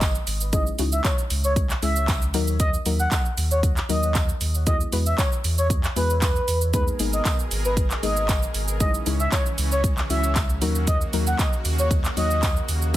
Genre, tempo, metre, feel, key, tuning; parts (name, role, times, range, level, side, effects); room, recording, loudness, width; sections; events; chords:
dance-pop; 116 BPM; 4/4; straight; A4 = 440 Hz
expressive synth lead; melody; 0.0-13.0 s; B4 to F#5; -27 LUFS; equal; chorus, ping-pong delay
soft round pluck; accompaniment; 0.0-13.0 s; F#3 to C#5; -30 LUFS; left 5 dB; chorus, sidechain pumping
sub bass with octave; bass; 0.0-13.0 s; G#1 to E2; -24 LUFS; equal; sidechain pumping
pop drum kit; drums; 0.0-13.0 s; handclaps, hi-hat, kick drum, shaker; -24 LUFS; equal
tambourine; percussion; 0.0-12.6 s; -37 LUFS; right 11 dB
supersaw pad; sustained chords; 6.7-13.0 s; B2 to A#4; -33 LUFS; right 1 dB; sidechain pumping
little or no reverb; dense, heavily limited modern master; -20 LUFS; side -14 dB against mid
0.0-13.0 A section
0.0 G#madd9; 0.5 C#madd9; 2.3 D#m; 4.7 Eadd9; 6.7 G#madd9; 8.8 C#madd9; 10.6 D#m